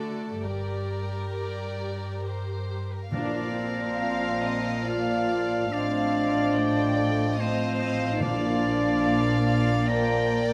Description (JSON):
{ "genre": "classical", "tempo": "64-75 BPM", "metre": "3/4", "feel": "rubato", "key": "G minor, Bb major from 3.1 s", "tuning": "A4 = 440 Hz", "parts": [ { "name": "warm chamber violin section", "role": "melody", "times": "0.0-10.5 s", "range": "Bb4 to G5", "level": "-41 LUFS", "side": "equal", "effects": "none" }, { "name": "dark chamber violin section", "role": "second line", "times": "0.0-10.5 s", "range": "A4 to F5", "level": "-38 LUFS", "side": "equal", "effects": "none" }, { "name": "warm chamber viola section", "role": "accompaniment", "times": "0.0-10.5 s", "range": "A3 to G4", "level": "-36 LUFS", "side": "equal", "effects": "none" }, { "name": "mellow French horn section", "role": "sustained chords", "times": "0.0-10.5 s", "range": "G3 to Bb4", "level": "-31 LUFS", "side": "equal", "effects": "none" }, { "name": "warm chamber cello section", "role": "bass", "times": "0.0-10.5 s", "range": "G2 to D3", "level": "-34 LUFS", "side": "equal", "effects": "none" }, { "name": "dark chamber double bass section", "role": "bass", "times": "0.4-10.5 s", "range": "G1 to Bb1", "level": "-36 LUFS", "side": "equal", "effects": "none" }, { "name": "baroque flute", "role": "second line", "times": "3.1-10.4 s", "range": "F5", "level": "-38 LUFS", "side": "equal", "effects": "none" }, { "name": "clear oboe", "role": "second line", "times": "3.1-10.4 s", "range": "Bb4 to Bb5", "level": "-34 LUFS", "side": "equal", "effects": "none" }, { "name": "dark clarinet", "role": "second line", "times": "3.1-10.4 s", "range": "D5 to Eb5", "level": "-38 LUFS", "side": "equal", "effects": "none" }, { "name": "mellow bassoon", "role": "accompaniment", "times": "3.1-10.4 s", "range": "F3", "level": "-37 LUFS", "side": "equal", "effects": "none" }, { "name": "timpani", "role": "percussion", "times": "3.1-9.4 s", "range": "Bb2", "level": "-38 LUFS", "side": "equal", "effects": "none" } ], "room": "light reverb", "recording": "close, detailed microphones", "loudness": "-26 LUFS", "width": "mono", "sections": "0.0-3.1 A section; 3.1-10.5 B section", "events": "none", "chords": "0.4 Gm; 3.1 Bb; 5.7 F7/A; 8.2 Bb" }